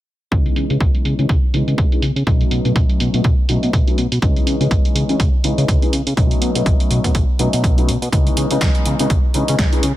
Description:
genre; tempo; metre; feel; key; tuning
filtered disco house; 123 BPM; 4/4; swing 57% on 16ths; unclear; A4 = 438 Hz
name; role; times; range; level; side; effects
clear concert grand piano; accompaniment; 0.3-9.8 s; E3 to D#4; -22 LUFS; left 2 dB; phaser, sidechain pumping, low-pass filter
fat analog bass; bass; 0.3-9.9 s; B1 to C#3; -19 LUFS; equal; sidechain pumping, low-pass filter
electronic kick drum; drums; 0.3-9.7 s; none; -17 LUFS; equal; none
punchy analog drum machine; drums; 0.3-9.9 s; hi-hat, snare drum; -25 LUFS; right 2 dB; sidechain pumping on hats, low-pass filter on hats, low-pass filter on snare
maracas; percussion; 8.1-9.8 s; none; barely audible; none; none
room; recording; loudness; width
small room reverb; none; -14 LUFS; side -14 dB against mid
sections
0.3-10.0 A section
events
filter sweep 0.3-10.0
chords
0.3 C#m7; 2.3 B9; 4.2 C#m7; 6.2 B9; 8.1 C#m7

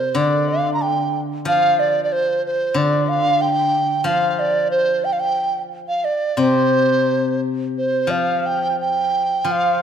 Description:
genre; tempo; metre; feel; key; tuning
chinese traditional; 91 BPM; 4/4; uneven beats, rubato; unclear; A4 = 440 Hz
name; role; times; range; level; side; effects
mellow large dizi; melody; 0.0-9.8 s; C5 to Bb5; -18 LUFS; right 2 dB; none
steel-string zither; accompaniment; 0.0-9.8 s; C3 to F3; -22 LUFS; left 4 dB; none
room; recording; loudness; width
moderate concert hall reverb, RT60 2.0 s; minimal, uncompressed stereo recording; -16 LUFS; side -8 dB against mid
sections
0.0-9.8 A section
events
none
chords
none

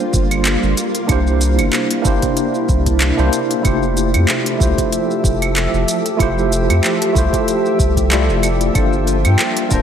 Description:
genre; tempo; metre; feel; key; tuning
sunset chillout; 94 BPM; 4/4; swing 55% on 16ths; F major; A4 = 440 Hz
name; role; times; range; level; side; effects
barky tine electric piano; accompaniment; 0.0-9.8 s; A3 to A5; -19 LUFS; moving between left 4 dB and right 5 dB; medium stereo tremolo, auto-pan, vintage 12-bit sampler grit, tape echo, slapback echo
shimmering ambient pad; sustained chords; 0.0-9.8 s; C3 to E5; -21 LUFS; right 1 dB; chorus, built-in reverb
smooth R&B drum kit; drums; 0.0-9.8 s; claves, handclaps, hi-hat, shaker; -21 LUFS; right 1 dB; overdrive
round analog bass; bass; 0.1-9.8 s; D1 to G2; -17 LUFS; equal; none
electronic kick drum; drums; 0.1-9.8 s; none; -19 LUFS; equal; overdrive
concert harp; arpeggios; 8.8-9.8 s; D4 to Bb4; -28 LUFS; left 1 dB; vintage 12-bit sampler grit, tape echo, slapback echo
room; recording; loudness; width
moderate lush hall reverb, RT60 1.6 s; big arena sound; -13 LUFS; side -8 dB against mid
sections
0.0-9.8 A section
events
none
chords
0.0 Gm11; 0.8 C9; 3.6 Fmaj9; 8.8 Gm11

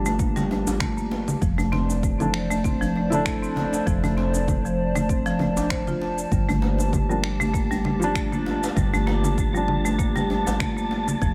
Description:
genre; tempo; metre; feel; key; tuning
organic downtempo; 98 BPM; 4/4; swing 55% on 16ths; G dorian; A4 = 440 Hz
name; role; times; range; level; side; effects
felt-muted upright piano; accompaniment; 0.0-11.2 s; E3 to E4; -32 LUFS; equal; sidechain pumping, tape echo
warbly tape-like pad; sustained chords; 0.0-11.3 s; D4 to A5; -33 LUFS; equal; chorus, built-in reverb, sidechain pumping
woody FM bass; bass; 0.0-11.3 s; F1 to G1; -30 LUFS; equal; sidechain pumping
marimba with hard mallets; arpeggios; 0.1-11.3 s; F3 to C5; -28 LUFS; equal; tape echo
electronic cabasa, congas and finger snaps; drums; 0.1-11.3 s; none; -32 LUFS; equal; studio reverb
djembe; percussion; 0.1-11.0 s; none; -35 LUFS; equal; none
electronic kick drum; drums; 0.2-11.3 s; none; -29 LUFS; equal; studio reverb
wind-like tuned noise texture; texture; 7.1-11.3 s; A5; -38 LUFS; equal; built-in reverb
room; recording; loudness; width
light reverb, small room ambience; none; -23 LUFS; mono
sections
0.0-11.3 A section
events
none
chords
0.0 Gmadd9; 1.4 F6; 6.3 Gmadd9

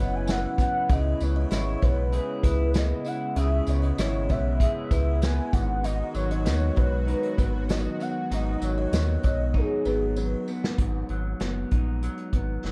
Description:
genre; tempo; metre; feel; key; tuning
indie pop, bedroom pop; 97 BPM; 4/4; straight; G# minor; A4 = 439 Hz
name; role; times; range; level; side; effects
warm velvety synth lead; melody; 0.0-10.5 s; G#4 to G#5; -34 LUFS; equal; lush chorus, slapback echo
buzzing kalimba; second line; 0.0-10.6 s; B4 to F#5; -40 LUFS; equal; ensemble chorus, slapback echo
electric guitar through a small old amp; accompaniment; 0.0-12.7 s; F#2 to G#4; -34 LUFS; equal; lush chorus, vibrato effect
lush unison pad; sustained chords; 0.0-10.8 s; C#3 to F#4; -39 LUFS; equal; chorus
sub bass with octave; bass; 0.0-12.7 s; F#1 to D#2; -29 LUFS; equal; none
unplugged drum kit; drums; 0.3-12.7 s; hi-hat, kick drum, snare drum; -29 LUFS; equal; none
tambourine; percussion; 0.3-10.6 s; none; -50 LUFS; equal; none
room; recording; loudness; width
small room reverb; none; -26 LUFS; mono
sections
0.0-10.8 A section; 10.8-12.7 B section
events
drum fill 9.6-10.8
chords
0.0 F#7sus4; 0.9 C#m7; 5.5 G#m7

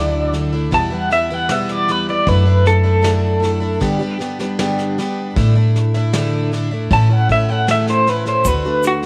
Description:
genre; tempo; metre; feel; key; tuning
acoustic folk duo or small band; 78 BPM; 4/4; straight; D major; A4 = 444 Hz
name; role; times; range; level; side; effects
electric guitar through a small old amp; melody; 0.0-9.1 s; F#4 to A5; -20 LUFS; equal; tremolo
picked plugged-in twelve-string acoustic guitar; accompaniment; 0.0-9.1 s; E2 to G4; -23 LUFS; equal; none
upright bass; bass; 0.0-9.1 s; D2 to A2; -20 LUFS; equal; none
soft brush drum kit; drums; 0.3-9.1 s; kick drum, snare drum; -28 LUFS; equal; none
egg shaker; percussion; 8.4-9.0 s; none; -30 LUFS; equal; none
room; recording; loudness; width
light reverb, small room reverb; none; -17 LUFS; mono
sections
0.0-9.1 A section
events
clean electric guitar solo 0.0-9.1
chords
0.0 Dadd9; 0.7 Em; 2.3 Dadd9/F#; 3.8 G; 5.4 Asus4; 6.9 A; 8.4 D

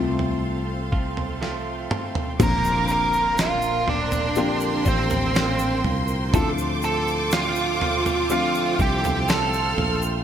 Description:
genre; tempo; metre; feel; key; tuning
pop ballad; 61 BPM; 4/4; straight; Bb major; A4 = 440 Hz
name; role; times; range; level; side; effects
felt-muted upright piano; accompaniment; 0.0-10.2 s; A2 to G4; -29 LUFS; left 6 dB; analog chorus
clear studio string section; sustained chords; 0.0-10.2 s; A4 to C6; -32 LUFS; right 1 dB; none
direct-recorded clean electric guitar; arpeggios; 0.0-10.2 s; Bb2 to F4; -32 LUFS; right 6 dB; digital delay
fretless electric bass; bass; 0.0-10.2 s; A1 to D2; -28 LUFS; equal; none
dusty soul sampler-style drum kit; drums; 0.2-10.0 s; crash cymbal, kick drum, snare drum, toms; -26 LUFS; right 1 dB; gated reverb
bluesy overdriven lead guitar; melody; 2.4-10.0 s; C4 to Bb5; -24 LUFS; right 3 dB; distortion
rich studio violin section; second line; 2.4-10.2 s; C6 to F6; -30 LUFS; equal; none
egg shaker; percussion; 2.4-10.2 s; none; -38 LUFS; left 7 dB; none
impact; sound effects; 2.5-6.3 s; none; -36 LUFS; equal; none
room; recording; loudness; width
moderate plate reverb, RT60 3.3 s; bright 1980s-style digital production; -20 LUFS; side -9 dB against mid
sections
0.0-2.4 A section; 2.4-10.2 B section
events
felt piano solo 0.0-2.4; drum fill 1.4-2.4; impact 2.4-6.3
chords
0.0 F/C; 2.4 Bbadd9; 6.3 Dm7

